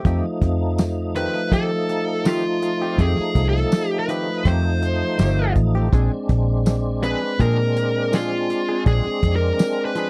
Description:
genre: straight-eighth soul blues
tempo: 82 BPM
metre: 4/4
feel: swing 54% on 16ths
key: F mixolydian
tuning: A4 = 440 Hz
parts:
  - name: direct-recorded clean electric guitar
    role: stabs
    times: 0.0-10.1 s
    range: Eb3 to Ab4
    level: -32 LUFS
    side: equal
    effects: analog chorus
  - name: tonewheel organ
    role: accompaniment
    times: 0.1-10.1 s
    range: F3 to Eb4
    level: -28 LUFS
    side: equal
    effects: slow rotary speaker, overdrive, chorus vibrato
  - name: vintage muted fingered electric bass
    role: bass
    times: 0.1-9.5 s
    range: G1 to F3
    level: -23 LUFS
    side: equal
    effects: none
  - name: warm soul drum kit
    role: drums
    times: 0.1-10.1 s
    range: hi-hat, kick drum, snare drum, tambourine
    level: -23 LUFS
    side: equal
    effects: none
  - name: dark smooth lead guitar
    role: melody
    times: 1.2-10.1 s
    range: F4 to C5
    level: -26 LUFS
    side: equal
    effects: overdrive
room: little or no reverb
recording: dry, close 1970s-style studio recording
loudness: -21 LUFS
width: mono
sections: 0.0-10.1 A section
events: none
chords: 0.0 F9; 5.9 Bb9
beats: | 0.05 0.78 1.52 2.25 | 2.99 3.72 4.46 5.19 | 5.92 6.66 7.39 8.13 | 8.86 9.59

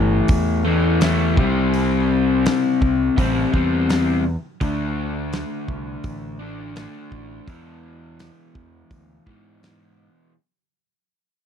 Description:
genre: classic rock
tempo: 84 BPM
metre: 4/4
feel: straight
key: unclear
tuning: A4 = 440 Hz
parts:
  - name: raw garage guitar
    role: riff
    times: 0.0-10.3 s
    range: E2 to D4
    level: -21 LUFS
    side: left 3 dB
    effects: overdrive
  - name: growling picked electric bass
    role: bass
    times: 0.0-10.1 s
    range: G1 to G#2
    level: -24 LUFS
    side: equal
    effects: overdrive
  - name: big rock drum kit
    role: drums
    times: 0.3-9.8 s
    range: hi-hat, kick drum, snare drum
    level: -23 LUFS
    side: equal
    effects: none
room: little or no reverb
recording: dry, close 1970s-style studio recording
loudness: -17 LUFS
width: side -8 dB against mid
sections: 0.0-10.3 A section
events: fade-out 0.0-10.3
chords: 0.0 A5; 1.4 C; 4.6 D5; 7.5 E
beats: 0.30 1.02 | 1.74 2.45 3.17 3.89 | 4.61 5.33 6.04 6.76 | 7.47 8.19 8.91 9.62

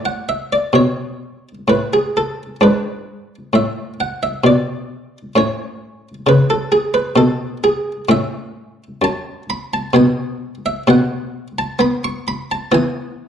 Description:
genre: classical, baroque-style suite movement for harpsichord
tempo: 65 BPM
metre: 3/4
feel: rubato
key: A major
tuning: A4 = 439 Hz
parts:
  - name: buff-stop harpsichord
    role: solo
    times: 0.0-13.3 s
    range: F#2 to C#6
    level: -15 LUFS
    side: equal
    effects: none
room: wet large studio reverb, RT60 1.2 s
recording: worn, warbling old tape, cassette tape, warbly pitch drift, lossy compression artefacts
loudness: -15 LUFS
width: side -8 dB against mid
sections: 0.0-13.3 A section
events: none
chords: 0.0 Aadd9; 2.6 G#dim; 5.4 A; 8.1 F#m7/A; 9.9 N.C.; 12.7 E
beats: 0.74 1.68 | 2.61 3.53 4.45 | 5.37 6.26 7.17 | 8.11 9.03 9.95 | 10.87 11.79 12.71

